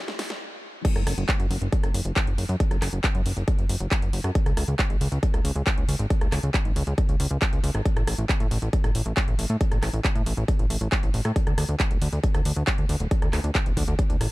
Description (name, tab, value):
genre	uplifting trance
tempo	137 BPM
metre	4/4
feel	straight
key	unclear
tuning	A4 = 443 Hz
part	big-room dance drum kit	drums	0.1-14.3 s	crash cymbal, handclaps, hi-hat, rim click, snare drum	-30 LUFS	equal	none
part	electronic kick drum	drums	0.8-14.1 s	none	-23 LUFS	equal	none
part	plucky analog bass	bass	1.0-14.3 s	D1 to A2	-26 LUFS	equal	sidechain pumping
room	little or no reverb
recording	dark, warm production, high-pass filter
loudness	-22 LUFS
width	side -19 dB against mid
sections	0.8-14.3 A section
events	drum fill 0.0-0.4; stop 0.4-0.8; drop 0.8-14.3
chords	none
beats	0.41 | 0.85 1.29 1.72 2.16 | 2.60 3.04 3.48 3.91 | 4.35 4.79 5.23 5.67 | 6.10 6.54 6.98 7.42 | 7.86 8.29 8.73 9.17 | 9.61 10.04 10.48 10.92 | 11.36 11.80 12.23 12.67 | 13.11 13.55 13.99